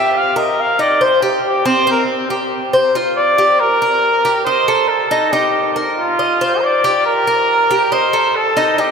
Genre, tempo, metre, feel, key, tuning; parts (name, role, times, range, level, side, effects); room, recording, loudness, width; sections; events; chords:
latin; 139 BPM; 4/4; straight; G minor; A4 = 440 Hz
warm trumpet; melody; 0.0-8.9 s; Eb4 to F5; -14 LUFS; right 1 dB
Cuban tres; arpeggios; 0.0-8.9 s; C4 to Eb5; -17 LUFS; left 1 dB
wet cathedral reverb, RT60 6.2 s; recorded in a church or concert hall; -12 LUFS; side -6 dB against mid
0.0-3.6 A section; 3.6-8.9 B section
trumpet solo 0.0-3.6
0.1 Gm; 1.0 C5; 2.7 F5; 3.6 Gm; 4.5 Adim; 5.3 Ebadd9; 6.2 F5; 7.1 Gm; 7.9 Adim